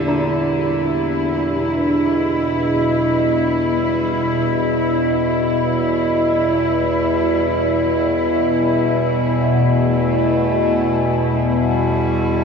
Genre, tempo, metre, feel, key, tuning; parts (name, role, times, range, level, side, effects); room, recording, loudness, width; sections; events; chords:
dark ambient drone; free time; E minor; A4 = 439 Hz
bright cello; melody; 0.0-12.4 s; D3 to A3; -30 LUFS; right 1 dB; ping-pong delay
rich chamber cello section; sustained chords; 0.0-12.4 s; Bb2 to E4; -19 LUFS; equal
dark detuned synth bell; arpeggios; 0.0-6.1 s; D4 to G4; -25 LUFS; equal; chorus, phaser, ping-pong delay
overtone-sweeping drone; drone; 0.0-12.4 s; E2 to G3; -18 LUFS; left 1 dB; chorus, built-in reverb, phaser
icy glass pad; texture; 0.0-1.6 s; G4; -34 LUFS; right 3 dB
wet huge ambient reverb, RT60 8.1 s; worn, warbling old tape, cassette tape, warbly pitch drift; -15 LUFS; side -5 dB against mid
0.0-1.6 A section; 1.6-12.4 B section
fade-in on cello 1.6-12.4
0.0 Gm; 1.6 Em